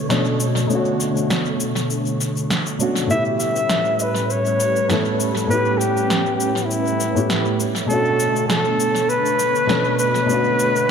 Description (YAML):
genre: sunset chillout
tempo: 100 BPM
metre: 4/4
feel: swing 54% on 16ths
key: B minor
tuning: A4 = 436 Hz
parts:
  - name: dark baby grand piano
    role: accompaniment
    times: 0.0-10.9 s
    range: A2 to A4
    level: -23 LUFS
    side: left 1 dB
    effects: auto-pan, vintage 12-bit sampler grit, tape echo
  - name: soft string machine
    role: sustained chords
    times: 0.0-10.9 s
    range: A2 to C#5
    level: -23 LUFS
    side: right 1 dB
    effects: phaser, ensemble chorus
  - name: electronic snare drum and cabasa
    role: drums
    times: 0.1-10.9 s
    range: none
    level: -25 LUFS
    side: equal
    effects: overdrive, tape echo
  - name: warm flugelhorn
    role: melody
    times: 3.1-10.9 s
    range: E4 to E5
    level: -20 LUFS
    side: left 1 dB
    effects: tape echo
room: wet plate reverb, RT60 3.1 s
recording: echo-heavy mix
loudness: -17 LUFS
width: side -7 dB against mid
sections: 0.0-10.9 A section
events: filter sweep on string machine 0.0-10.9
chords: 0.0 Bm9; 3.1 A9; 7.6 Bm9